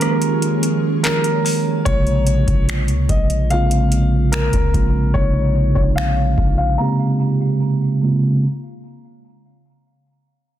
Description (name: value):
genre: contemporary R&B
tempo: 73 BPM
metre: 4/4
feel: straight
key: Bb dorian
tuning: A4 = 441 Hz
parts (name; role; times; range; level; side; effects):
- warm concert grand piano; melody; 0.0-8.0 s; Bb4 to Bb5; -24 LUFS; left 3 dB; low-pass filter, tape echo
- mellow tine electric piano; accompaniment; 0.0-8.5 s; C3 to Ab4; -18 LUFS; right 2 dB; phaser, low-pass filter
- ethereal airy pad; sustained chords; 0.0-1.8 s; F3 to Db5; -27 LUFS; equal; ensemble chorus, built-in reverb, phaser
- booming analog drum machine; drums; 0.0-6.6 s; finger snaps, handclaps, hi-hat, kick drum, rim click; -20 LUFS; left 1 dB; soft clipping on snare
- synth chime; texture; 0.0-2.2 s; Ab5 to Db6; -37 LUFS; left 4 dB; ensemble chorus, tape echo
- long sustained 808-style bass; bass; 1.9-6.8 s; Bb1 to Db2; -19 LUFS; left 1 dB; none
room: light reverb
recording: dense, heavily limited modern master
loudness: -15 LUFS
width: side -12 dB against mid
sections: 0.0-1.9 A section; 1.9-8.4 B section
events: break 0.0-1.9; filter sweep 1.9-8.4; silent gap 6.8-8.4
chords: 0.0 Db6; 1.9 Bbm9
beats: 0.22 1.04 | 1.86 2.68 3.50 4.33 | 5.15 5.97 6.79 7.62